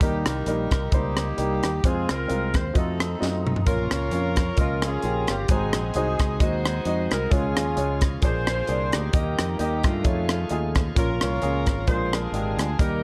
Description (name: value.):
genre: uptempo gospel.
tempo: 132 BPM.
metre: 4/4.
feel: swing 55% on 8ths.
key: unclear.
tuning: A4 = 440 Hz.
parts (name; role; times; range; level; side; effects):
clear saxophone section; melody; 0.0-13.0 s; Ab3 to Db5; -31 LUFS; equal; none.
warm baby grand piano; accompaniment; 0.0-13.0 s; Ab2 to Eb5; -32 LUFS; equal; none.
fingered electric bass; bass; 0.0-13.0 s; G1 to G2; -30 LUFS; equal; none.
crisp fusion drum kit; drums; 0.0-12.9 s; hi-hat, kick drum, rim click, snare drum, toms; -27 LUFS; equal; none.
bright tonewheel organ; sustained chords; 3.7-13.0 s; Db3 to Bb4; -39 LUFS; equal; fast rotary speaker, overdrive.
room: light reverb, small room reverb.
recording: dark, warm production.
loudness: -24 LUFS.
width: mono.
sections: 0.0-13.0 A section.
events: drum fill 3.2-3.7.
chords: 0.0 Eb; 1.8 Fm; 2.8 F7b9; 3.7 Bbm; 5.5 Ab7; 7.3 Db; 8.2 Bb9; 9.1 Eb; 10.0 F7alt; 11.0 Bbm; 11.9 Bb7.